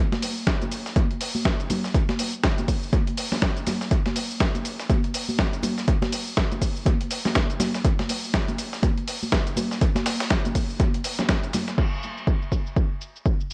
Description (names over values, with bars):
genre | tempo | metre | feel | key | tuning
house | 122 BPM | 4/4 | swing 59% on 16ths | none | none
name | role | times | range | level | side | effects
dusty soul sampler-style drum kit | drums | 0.1-13.5 s | crash cymbal, hi-hat, shaker, snare drum | -31 LUFS | equal | low-pass filter on hats, vintage 12-bit sampler grit, low-pass filter on perc, low-pass filter on snare, low-pass filter on cymbals, low-pass filter on room, dub echo
dusty soul sampler-style drum kit | drums | 0.1-11.8 s | hi-hat, snare drum | -36 LUFS | equal | sidechain pumping on hats, high-pass filter on hats, vintage 12-bit sampler grit, high-pass filter on snare
congas | percussion | 0.1-11.7 s | none | -32 LUFS | equal | sidechain pumping on perc, dub echo
electronic kick drum | drums | 0.5-13.4 s | none | -25 LUFS | equal | vintage 12-bit sampler grit
room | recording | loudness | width
light reverb | echo-heavy mix, cassette tape | -25 LUFS | mono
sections
0.0-11.8 A section; 11.8-13.5 B section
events
filter sweep on drum 11.8-13.5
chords
none